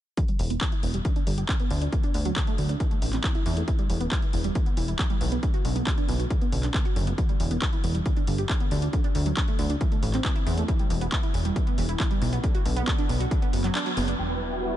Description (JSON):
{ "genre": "uplifting trance", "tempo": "137 BPM", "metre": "4/4", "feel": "straight", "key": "E minor", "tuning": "A4 = 439 Hz", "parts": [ { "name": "wide unison pluck", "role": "arpeggios", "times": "0.2-14.1 s", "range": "D3 to G4", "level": "-31 LUFS", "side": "right 2 dB", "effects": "analog chorus, sidechain pumping, diffuse ambient delay" }, { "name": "electronic kick drum", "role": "drums", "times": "0.2-13.4 s", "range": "none", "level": "-25 LUFS", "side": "equal", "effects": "overdrive" }, { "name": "techno drum kit", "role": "drums", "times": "0.2-14.2 s", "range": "handclaps, hi-hat", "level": "-33 LUFS", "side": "equal", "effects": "overdrive, sidechain pumping on hats" }, { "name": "plucky analog bass", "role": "bass", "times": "0.4-14.8 s", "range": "E1 to E2", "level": "-27 LUFS", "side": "equal", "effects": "sidechain pumping" }, { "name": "supersaw chords", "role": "melody", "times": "14.2-14.8 s", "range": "B4 to G5", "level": "-33 LUFS", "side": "equal", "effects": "wide subtle chorus, sidechain pumping, low-pass filter, diffuse ambient delay" }, { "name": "supersaw pad", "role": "sustained chords", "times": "14.2-14.8 s", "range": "G3 to B4", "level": "-30 LUFS", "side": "right 1 dB", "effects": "ensemble chorus, sidechain pumping, low-pass filter" } ], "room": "light reverb", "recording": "nothing above 10.4 kHz", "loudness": "-23 LUFS", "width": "side -12 dB against mid", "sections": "0.2-14.2 A section", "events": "filter sweep on synth arpeggio sound 0.2-14.2; kick drops out 13.8-14.2; band accent 13.8", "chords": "0.2 Em; 1.1 G5; 1.9 D; 2.8 Am; 3.7 Em; 5.4 Bm; 7.2 Em; 8.1 G5; 8.9 D; 9.8 Am; 10.7 Em; 12.4 Bm; 14.2 Emadd9" }